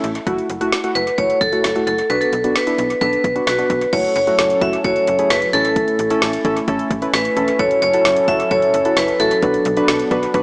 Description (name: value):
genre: synth-pop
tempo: 131 BPM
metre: 4/4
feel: straight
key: F# minor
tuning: A4 = 441 Hz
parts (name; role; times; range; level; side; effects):
- warm analog keys; accompaniment; 0.0-10.4 s; A3 to B4; -21 LUFS; equal; chorus
- slap-like FM bass; bass; 0.0-10.4 s; E1 to B1; -28 LUFS; equal; none
- deep house drum kit; drums; 0.0-10.4 s; crash cymbal, hi-hat, kick drum, snare drum; -22 LUFS; equal; analog delay
- vibraphone with hard mallets; melody; 1.0-10.1 s; F#4 to E5; -16 LUFS; equal; analog delay
- warm analog pad; sustained chords; 3.9-10.4 s; F#3 to A4; -24 LUFS; equal; chorus
room: moderate plate reverb, RT60 1.6 s, digital ambience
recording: echo-heavy mix, small speaker sound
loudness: -14 LUFS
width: side -38 dB against mid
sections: 0.0-3.9 A section; 3.9-10.4 B section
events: none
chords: 0.3 F#m7; 2.1 Bm; 3.9 F#m7; 5.5 A; 7.6 F#m7; 9.4 Bm